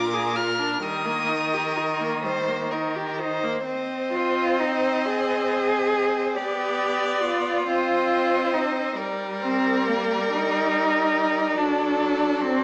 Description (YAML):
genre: classical, slow romantic movement for string quartet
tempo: 42-49 BPM (dotted quarters)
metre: 6/8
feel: rubato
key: Eb major, C minor from 3.7 s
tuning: A4 = 442 Hz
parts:
  - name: rich violin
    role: melody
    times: 0.0-12.6 s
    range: D5 to F6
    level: -30 LUFS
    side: left 1 dB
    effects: none
  - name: rich violin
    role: second line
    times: 0.0-12.6 s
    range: A4 to D5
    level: -28 LUFS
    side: equal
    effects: none
  - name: clear viola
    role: accompaniment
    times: 0.0-12.6 s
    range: F#3 to Ab4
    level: -27 LUFS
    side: equal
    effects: none
  - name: rich cello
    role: bass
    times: 0.0-12.6 s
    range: Bb2 to Ab4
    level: -24 LUFS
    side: equal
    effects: none
room: wet recital hall reverb, RT60 1.2 s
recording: small speaker sound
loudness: -21 LUFS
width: side -35 dB against mid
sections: 0.0-3.7 A section; 3.7-12.6 B section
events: none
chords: 0.0 Bb7; 0.8 Eb; 3.7 Cm; 6.4 G/B; 7.7 Cm; 9.0 Gm; 11.6 D/F#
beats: | 0.83 2.24 | 3.66 5.05 | 6.36 7.67 | 8.96 10.32 | 11.57